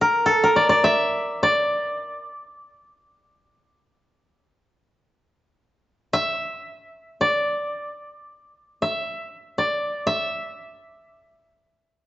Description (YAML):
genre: japanese traditional, Japanese chamber music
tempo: free time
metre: none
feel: none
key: unclear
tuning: A4 = 441 Hz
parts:
  - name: koto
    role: solo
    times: 0.0-12.1 s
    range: A4 to E5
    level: -20 LUFS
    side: equal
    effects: none
room: moderate recital hall reverb, RT60 1.5 s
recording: worn, warbling old tape, cassette tape, warbly pitch drift, nothing above 7.7 kHz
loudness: -20 LUFS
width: side -14 dB against mid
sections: 0.0-12.1 A section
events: none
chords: none